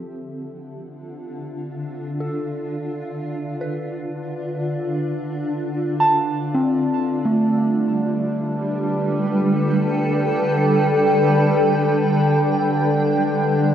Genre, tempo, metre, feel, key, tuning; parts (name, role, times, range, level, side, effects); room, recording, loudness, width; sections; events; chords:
ambient; free time; D dorian; A4 = 441 Hz
granular cloud pad; sustained chords; 0.0-13.7 s; D3 to G5; -21 LUFS; equal; built-in reverb, cassette tape
bowed-like drone; drone; 1.1-13.7 s; D3 to D4; -24 LUFS; equal; built-in reverb, cassette tape
soft synth bell; arpeggios; 2.2-13.7 s; A3 to A5; -24 LUFS; right 1 dB; chorus, phaser, cassette tape, tape echo
wet small room reverb, RT60 0.6 s; home recording on cassette; -18 LUFS; side -9 dB against mid
0.0-13.7 A section
fade-in on ambient pad 0.0-13.7; fade-in on synth bell 0.0-13.7; fade-in on synth drone 0.0-13.7
0.0 Dm7